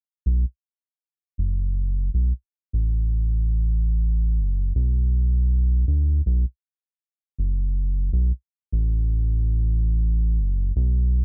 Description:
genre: trip hop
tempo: 80 BPM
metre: 4/4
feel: swing 57% on 16ths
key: B minor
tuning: A4 = 440 Hz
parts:
  - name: round analog bass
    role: bass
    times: 0.3-11.2 s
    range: F#1 to D2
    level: -22 LUFS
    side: equal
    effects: none
room: little or no reverb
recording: low-pass filter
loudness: -23 LUFS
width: mono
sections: 0.3-11.2 A section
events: filter sweep 0.3-11.2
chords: none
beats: | 0.25 1.00 1.75 2.50 | 3.25 4.00 4.75 5.50 | 6.25 7.00 7.75 8.50 | 9.25 10.00 10.75

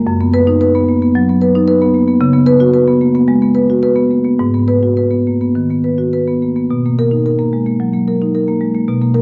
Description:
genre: classical, contemporary piece for solo marimba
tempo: 101-115 BPM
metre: 4/4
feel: rubato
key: unclear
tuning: A4 = 439 Hz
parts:
  - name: marimba with medium mallets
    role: solo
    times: 0.0-9.2 s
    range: F#2 to B4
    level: -13 LUFS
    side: equal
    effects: none
room: moderate recital hall reverb, RT60 1.5 s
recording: dark, warm production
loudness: -13 LUFS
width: mono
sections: 0.0-9.2 A section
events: none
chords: 0.1 Bmaj7/F#; 2.2 C#7sus4; 4.4 G#m9; 6.7 Bmaj7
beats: | 0.06 0.61 1.16 1.69 | 2.21 2.74 3.28 3.83 | 4.40 4.98 5.56 6.13 | 6.71 7.27 7.81 8.35 | 8.88

